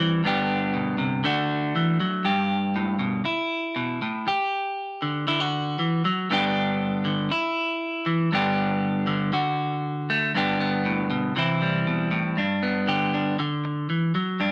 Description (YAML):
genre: highlife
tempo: 119 BPM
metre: 4/4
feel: straight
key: G major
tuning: A4 = 442 Hz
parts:
  - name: electric guitar at the edge of break-up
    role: solo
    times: 0.0-14.5 s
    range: G2 to G4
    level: -25 LUFS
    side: equal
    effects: none
room: moderate studio reverb, RT60 0.6 s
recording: none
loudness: -25 LUFS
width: mono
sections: 0.0-10.3 A section; 10.3-14.5 A section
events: none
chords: 0.2 G; 1.2 D; 2.3 G; 3.3 N.C.; 4.3 G5; 5.3 D; 6.3 G; 7.3 N.C.; 8.3 G; 9.3 D; 10.3 G; 11.4 C; 12.4 G; 13.4 D